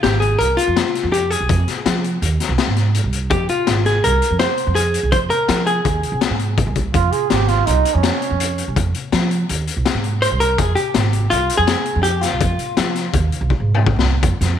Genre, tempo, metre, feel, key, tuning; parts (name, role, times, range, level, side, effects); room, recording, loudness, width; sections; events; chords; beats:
progressive instrumental, band music in an uneven meter; 165 BPM; 5/4; straight; F minor; A4 = 440 Hz
vintage hollow-body jazz guitar; melody; 0.0-6.7, 10.2-13.7 s; F4 to C5; -19 LUFS; left 1 dB
upright bass; bass; 0.0-14.6 s; Ab1 to F3; -19 LUFS; right 2 dB
raw garage drum kit; drums; 0.0-14.5 s; hi-hat, kick drum, snare drum, toms; -20 LUFS; left 5 dB
mellow flugelhorn; second line; 6.9-8.7 s; Db4 to Ab4; -19 LUFS; right 10 dB
light reverb, studio reverb; 1960s-style stereo; -15 LUFS; side -9 dB against mid
0.0-14.2 A section
drum fill 13.5-14.2
0.0 Abmaj13; 1.5 Fm7; 3.3 Ab6; 5.1 Fm7; 6.9 Dbmaj7; 8.8 Fm7; 10.6 Ab6; 12.4 Fm7
0.03 0.40 0.76 1.12 | 1.49 1.85 2.21 2.58 2.94 | 3.31 3.67 4.03 4.40 4.76 | 5.12 5.49 5.85 6.22 6.58 | 6.94 7.31 7.67 8.04 8.40 | 8.76 9.13 9.49 9.86 10.22 | 10.58 10.95 11.31 11.68 12.04 | 12.40 12.77 13.13 13.50 13.86 | 14.23